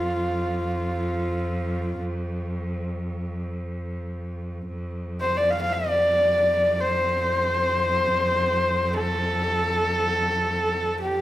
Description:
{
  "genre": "mongolian traditional, Mongolian folk",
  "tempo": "free time",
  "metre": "none",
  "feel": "none",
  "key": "F gong mode",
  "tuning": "A4 = 441 Hz",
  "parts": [
    { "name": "rich horsehead fiddle", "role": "melody", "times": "0.0-11.2 s", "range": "F4 to F5", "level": "-22 LUFS", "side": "equal", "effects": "none" },
    { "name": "clear cello", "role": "drone", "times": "0.0-11.2 s", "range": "F2", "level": "-28 LUFS", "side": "equal", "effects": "none" }
  ],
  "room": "wet recital hall reverb, RT60 1.4 s",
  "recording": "none",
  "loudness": "-22 LUFS",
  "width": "side -14 dB against mid",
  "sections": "0.0-4.7 A section; 4.7-11.2 A section",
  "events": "none",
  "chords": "none",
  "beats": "free time"
}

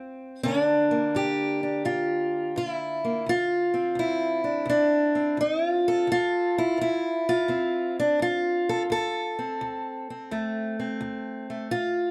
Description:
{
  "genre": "acoustic country blues, solo or duo",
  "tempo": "85 BPM",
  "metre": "4/4",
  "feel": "swing 67% on 8ths",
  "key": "D minor",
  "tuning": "A4 = 440 Hz",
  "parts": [
    { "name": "fingerpicked steel-string acoustic guitar", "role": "solo", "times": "0.0-12.1 s", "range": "D2 to A4", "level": "-26 LUFS", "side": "equal", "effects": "none" }
  ],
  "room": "moderate studio ambience, RT60 0.5 s",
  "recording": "dark, warm production",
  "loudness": "-26 LUFS",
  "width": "mono",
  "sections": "0.0-12.1 A section",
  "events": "none",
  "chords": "0.4 Gm7; 3.3 Dm7",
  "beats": "| 0.43 1.14 1.84 2.55 | 3.26 3.96 4.67 5.38 | 6.08 6.79 7.49 8.20 | 8.90 9.61 10.31 11.01 | 11.71"
}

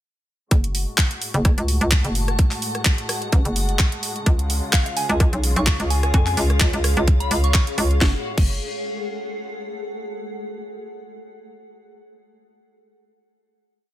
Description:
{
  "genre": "bass house",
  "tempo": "128 BPM",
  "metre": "4/4",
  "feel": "swing 55% on 16ths",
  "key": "F# harmonic minor",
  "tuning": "A4 = 443 Hz",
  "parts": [
    { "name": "clear symphonic string section", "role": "sustained chords", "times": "0.5-8.2 s", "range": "A2 to F#4", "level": "-32 LUFS", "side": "left 1 dB", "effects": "sidechain pumping, low-pass filter" },
    { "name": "hollow knocking FM bass", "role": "bass", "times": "0.5-8.6 s", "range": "F#1 to E#2", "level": "-20 LUFS", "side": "equal", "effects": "tube saturation, sidechain pumping" },
    { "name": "electronic kick drum", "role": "drums", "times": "0.5-8.5 s", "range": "none", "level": "-18 LUFS", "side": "equal", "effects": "none" },
    { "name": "garage drum kit", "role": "drums", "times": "0.5-8.5 s", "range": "crash cymbal, handclaps, hi-hat, rim click, snare drum", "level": "-24 LUFS", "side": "equal", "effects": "none" },
    { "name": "granular cloud pad", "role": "texture", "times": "1.3-9.9 s", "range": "G#4 to A5", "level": "-32 LUFS", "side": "left 1 dB", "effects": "built-in reverb, sidechain pumping" },
    { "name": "soft synth bell", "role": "melody", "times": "4.7-7.6 s", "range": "E#5 to C#6", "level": "-29 LUFS", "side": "equal", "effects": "chorus, phaser, ping-pong delay" }
  ],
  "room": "digital ambience",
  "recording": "none",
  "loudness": "-18 LUFS",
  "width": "side -13 dB against mid",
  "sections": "0.5-8.0 drop; 8.0-9.9 final chord",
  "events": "drop 0.5-8.0",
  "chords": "0.5 F#madd9; 4.3 C#; 8.0 F#madd9",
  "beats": "| 0.51 0.98 1.45 1.92 | 2.39 2.86 3.33 3.79 | 4.26 4.73 5.20 5.67 | 6.14 6.61 7.08 7.54 | 8.01 8.48 8.95 9.42"
}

